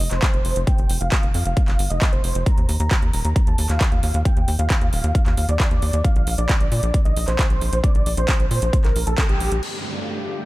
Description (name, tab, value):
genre	uplifting trance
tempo	134 BPM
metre	4/4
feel	straight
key	unclear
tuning	A4 = 440 Hz
part	dense compressed supersaw	melody	0.0-10.5 s	G4 to Bb5	-27 LUFS	equal	sidechain pumping, low-pass filter, digital delay
part	tight sequencer bass	bass	0.0-9.6 s	Eb1 to Bb2	-22 LUFS	equal	sidechain pumping
part	big-room dance drum kit	drums	0.0-9.7 s	crash cymbal, handclaps, hi-hat	-27 LUFS	right 1 dB	none
part	electronic kick drum	drums	0.2-9.3 s	none	-18 LUFS	equal	none
part	lush unison pad	sustained chords	9.6-10.5 s	G2 to D5	-28 LUFS	equal	chorus, sidechain pumping
part	downlifter	sound effects	9.6-10.5 s	none	-30 LUFS	right 2 dB	none
room	little or no reverb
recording	dark, warm production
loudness	-17 LUFS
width	side -18 dB against mid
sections	0.0-9.6 A section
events	band accent 9.2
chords	0.0 Fsus2; 2.5 Ebmaj9; 6.0 Bb69; 9.6 Gsus2